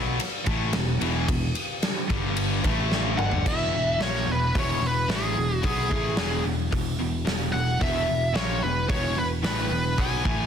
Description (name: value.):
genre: hard rock.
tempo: 110 BPM.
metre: 4/4.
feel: straight.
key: unclear.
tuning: A4 = 440 Hz.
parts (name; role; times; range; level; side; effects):
distorted electric guitar; riff; 0.0-10.5 s; E2 to B3; -31 LUFS; left 11 dB; overdrive.
high-gain distorted guitar; riff; 0.0-10.5 s; E2 to B3; -32 LUFS; right 9 dB; distortion.
picked electric bass; bass; 0.0-10.5 s; E1 to B1; -29 LUFS; equal; none.
big rock drum kit; drums; 0.2-10.4 s; crash cymbal, hi-hat, kick drum, ride cymbal, snare drum, toms; -28 LUFS; equal; none.
high-gain lead guitar; melody; 3.2-10.5 s; G#4 to G#5; -27 LUFS; equal; distortion, slapback echo.
room: light reverb, small room ambience.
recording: dense, heavily limited modern master.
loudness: -22 LUFS.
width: side -8 dB against mid.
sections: 0.0-3.5 A section; 3.5-10.5 B section.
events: drum fill 2.9-3.5.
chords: 0.0 E5; 2.1 G5; 2.6 A5; 3.2 Dadd11/G; 3.5 E.